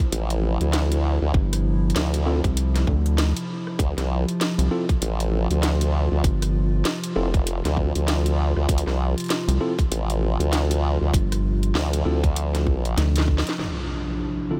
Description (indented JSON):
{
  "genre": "glitch hop",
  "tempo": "98 BPM",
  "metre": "4/4",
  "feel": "swing 59% on 16ths",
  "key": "D minor",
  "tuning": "A4 = 440 Hz",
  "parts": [
    { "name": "warbly tape-like pad", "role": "sustained chords", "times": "0.0-14.6 s", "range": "C3 to F4", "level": "-31 LUFS", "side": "equal", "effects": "chorus, built-in reverb, sidechain pumping" },
    { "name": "formant-sweep wobble bass", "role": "bass", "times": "0.1-13.0 s", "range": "F1 to D2", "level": "-24 LUFS", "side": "equal", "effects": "chorus, tube saturation" },
    { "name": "drum and bass drum kit", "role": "drums", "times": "0.1-13.7 s", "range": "hi-hat, rim click, snare drum", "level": "-32 LUFS", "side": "equal", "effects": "none" },
    { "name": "rubbery square bass", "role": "bass", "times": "1.3-13.4 s", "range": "G1 to D2", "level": "-23 LUFS", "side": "equal", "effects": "none" },
    { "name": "electronic kick drum", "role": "drums", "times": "1.3-13.4 s", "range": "none", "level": "-24 LUFS", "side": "equal", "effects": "none" },
    { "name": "tine electric piano", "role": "stabs", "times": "2.3-14.6 s", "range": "D3 to A4", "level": "-34 LUFS", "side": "equal", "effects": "none" },
    { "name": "impact", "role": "sound effects", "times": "13.6-14.6 s", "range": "none", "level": "-33 LUFS", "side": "equal", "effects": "none" }
  ],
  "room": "light reverb, digital ambience",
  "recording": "none",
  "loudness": "-23 LUFS",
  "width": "mono",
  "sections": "0.0-13.6 A section; 13.6-14.6 B section",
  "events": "drum fill 13.0-13.6; band accent 13.5-13.8; impact 13.6-14.6; filter sweep on tine electric piano 13.6-14.6",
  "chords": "0.0 Dm9"
}